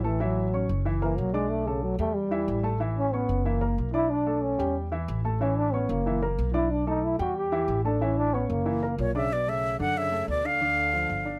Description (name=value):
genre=jazz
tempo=185 BPM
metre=4/4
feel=straight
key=B minor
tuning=A4 = 441 Hz
part: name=breathy trombone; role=second line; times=0.0-11.4 s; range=A#2 to G4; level=-31 LUFS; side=equal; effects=none
part: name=warm baby grand piano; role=accompaniment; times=0.0-11.4 s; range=D3 to D6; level=-34 LUFS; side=equal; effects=none
part: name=upright bass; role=bass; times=0.0-11.4 s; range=F#1 to F#2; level=-32 LUFS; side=equal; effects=none
part: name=breathy concert flute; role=melody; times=9.0-11.4 s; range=C#5 to F#5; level=-28 LUFS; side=equal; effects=none
room=light reverb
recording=none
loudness=-27 LUFS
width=mono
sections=0.0-9.3 A section; 9.3-11.4 B section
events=trombone solo 0.0-9.3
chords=0.2 A6; 0.9 F#7; 1.5 Bm7; 2.2 Em; 2.8 A69; 3.5 F#7; 4.1 Bm9; 4.8 Em; 5.4 A6; 6.1 F#7; 6.7 Bm7; 7.4 Em; 8.0 A6; 8.7 F#7; 9.3 Bm9; 10.6 Dm